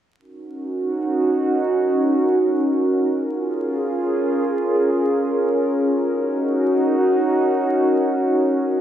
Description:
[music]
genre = drum and bass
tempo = free time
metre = none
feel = none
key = Eb minor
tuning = A4 = 438 Hz
[part]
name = warbly tape-like pad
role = sustained chords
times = 0.5-8.8 s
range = Db4 to Bb4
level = -18 LUFS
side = equal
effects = chorus, built-in reverb
[sound]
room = wet lush hall reverb, RT60 2.5 s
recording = vinyl crackle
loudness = -17 LUFS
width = side -10 dB against mid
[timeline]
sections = 0.2-8.8 A section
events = none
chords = 0.2 Ebm7; 3.1 Bbm7; 6.0 Ebm7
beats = free time

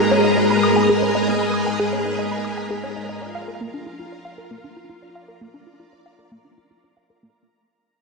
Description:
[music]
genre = ambient, sequencer-driven space music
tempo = 116 BPM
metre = 4/4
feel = straight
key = unclear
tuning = A4 = 439 Hz
[part]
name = string machine, full ensemble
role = sustained chords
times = 0.0-7.4 s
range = Ab3 to Eb5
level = -19 LUFS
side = equal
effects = ensemble chorus
[part]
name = hollow square pluck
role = riff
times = 0.0-7.3 s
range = Bb3 to Eb6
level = -24 LUFS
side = equal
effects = chorus, analog delay
[part]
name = bubbling stepped-filter texture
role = texture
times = 0.0-7.4 s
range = Bb5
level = -31 LUFS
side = left 1 dB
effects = chorus, built-in reverb
[sound]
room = wet spring reverb, RT60 3.0 s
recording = echo-heavy mix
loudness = -18 LUFS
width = side -2 dB against mid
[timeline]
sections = 0.0-7.4 A section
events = fade-out 0.0-7.4; filter sweep on synth arpeggio sound 0.0-7.4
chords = 0.0 Abmadd9; 3.2 Bb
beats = 0.11 0.63 | 1.14 1.66 2.18 2.70 | 3.21 3.73 4.25 4.76 | 5.28 5.80 6.32 6.83

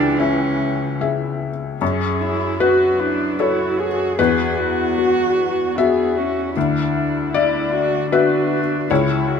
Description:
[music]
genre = neoclassical piano and strings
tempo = 76 BPM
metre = 3/4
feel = rubato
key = unclear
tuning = A4 = 441 Hz
[part]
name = dark cello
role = second line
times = 0.0-9.4 s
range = B3 to G#4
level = -22 LUFS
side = right 5 dB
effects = none
[part]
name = dark viola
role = accompaniment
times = 0.0-9.4 s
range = E3 to G#4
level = -26 LUFS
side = right 4 dB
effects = none
[part]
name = felt-muted upright piano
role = accompaniment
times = 0.0-9.4 s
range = C#2 to E5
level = -18 LUFS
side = left 6 dB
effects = none
[sound]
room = moderate studio ambience, RT60 0.5 s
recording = minimal, uncompressed stereo recording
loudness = -16 LUFS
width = side -6 dB against mid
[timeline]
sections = 0.0-1.8 A section; 1.8-9.4 B section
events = none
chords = 0.0 C#m; 1.8 F#madd9; 4.2 Esus2; 6.6 Dadd9; 8.9 C#m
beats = 0.19 1.00 | 1.81 2.60 3.39 | 4.18 4.97 5.77 | 6.56 7.34 8.12 | 8.90

